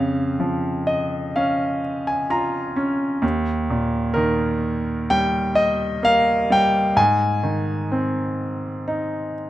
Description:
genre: classical, lyrical solo piano.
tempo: 64 BPM.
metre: 4/4.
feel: rubato.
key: Ab major.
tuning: A4 = 439 Hz.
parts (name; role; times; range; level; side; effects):
bright concert grand piano; solo; 0.0-9.5 s; Eb2 to Bb5; -19 LUFS; equal; none.
room: light reverb.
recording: close, detailed microphones.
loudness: -19 LUFS.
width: side -14 dB against mid.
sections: 0.0-9.5 A section.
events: grand piano fill 0.4-3.2.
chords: 0.0 Bbm/F; 3.2 Eb; 7.0 Ab.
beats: 0.41 1.36 2.31 | 3.23 4.17 5.10 6.03 | 6.97 7.91 8.88.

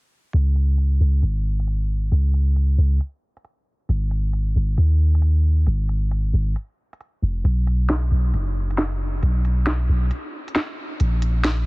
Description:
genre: future garage.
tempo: 135 BPM.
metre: 4/4.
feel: swing 66% on 16ths.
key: unclear.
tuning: A4 = 435 Hz.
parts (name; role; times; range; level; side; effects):
soft 808-style bass; bass; 0.3-11.7 s; E#1 to D#2; -18 LUFS; equal; none.
organic electronic drum kit; drums; 0.3-11.6 s; hi-hat, snare drum; -27 LUFS; equal; small room ambience.
room: little or no reverb.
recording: heavily compressed radio sound, low-pass filter.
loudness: -19 LUFS.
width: side -25 dB against mid.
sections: 0.3-11.7 A section.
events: filter sweep 0.3-11.7.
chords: none.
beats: | 0.34 0.78 1.23 1.67 | 2.12 2.56 3.01 3.45 | 3.90 4.34 4.78 5.23 | 5.67 6.12 6.56 7.01 | 7.45 7.89 8.34 8.78 | 9.23 9.67 10.12 10.56 | 11.01 11.45.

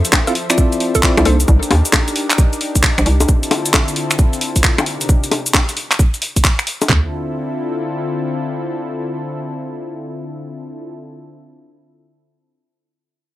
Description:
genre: UK garage, two-step garage.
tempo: 133 BPM.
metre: 4/4.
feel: swing 65% on 16ths.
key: D minor.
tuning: A4 = 440 Hz.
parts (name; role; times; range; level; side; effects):
hollow square pluck; melody; 0.0-1.5 s; A4; -25 LUFS; equal; chorus, digital delay.
warm analog pad; sustained chords; 0.0-10.9 s; C3 to E5; -24 LUFS; left 2 dB; wide subtle chorus, sidechain pumping.
hollow knocking FM bass; bass; 0.0-3.3 s; Bb1 to Eb2; -13 LUFS; equal; tube saturation.
breakbeat sampler-style drum kit; drums; 0.0-6.9 s; bongos, cabasa, finger snaps, handclaps, hi-hat; -16 LUFS; left 1 dB; none.
garage drum kit; drums; 0.1-7.0 s; handclaps, kick drum, toms; -14 LUFS; equal; none.
bell-like tine electric piano; stabs; 0.3-1.4 s; Bb3 to F5; -20 LUFS; equal; fast stereo tremolo, digital delay.
room: little or no reverb.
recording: none.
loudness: -14 LUFS.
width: side -15 dB against mid.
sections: 0.0-6.9 A section; 6.9-10.5 B section.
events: drop 0.0-6.9.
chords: 0.0 Dm9; 1.3 Cm9; 3.3 Dm9; 4.9 Cm9; 6.9 Dm9.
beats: 0.13 0.58 1.03 | 1.48 1.93 2.38 2.83 | 3.29 3.74 4.19 4.64 | 5.09 5.54 5.99 6.44 | 6.89 7.34 7.80 8.25 | 8.70 9.15 9.60 10.05.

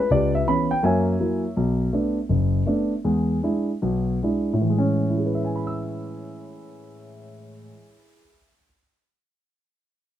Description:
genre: solo jazz.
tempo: 140-164 BPM.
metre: 4/4.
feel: swing 63% on 8ths.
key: A major.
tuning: A4 = 440 Hz.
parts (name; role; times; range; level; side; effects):
dark concert grand piano; solo; 0.0-8.8 s; F#1 to E6; -21 LUFS; equal; none.
room: little or no reverb.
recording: close, detailed microphones.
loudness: -20 LUFS.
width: side -11 dB against mid.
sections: 0.0-1.5 A section; 1.5-4.7 B section; 4.7-8.1 C section.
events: slowing down 1.5-4.7.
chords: 0.1 C#m7b5; 0.8 F#7; 1.5 Bm7; 3.0 E7; 4.7 Amaj7.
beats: | 0.09 0.45 0.82 1.18 | 1.55 1.92 2.29 2.66 | 3.04 3.43 3.83 4.24 | 4.66 5.09 5.52 5.95 | 6.38 6.80 7.23 7.66.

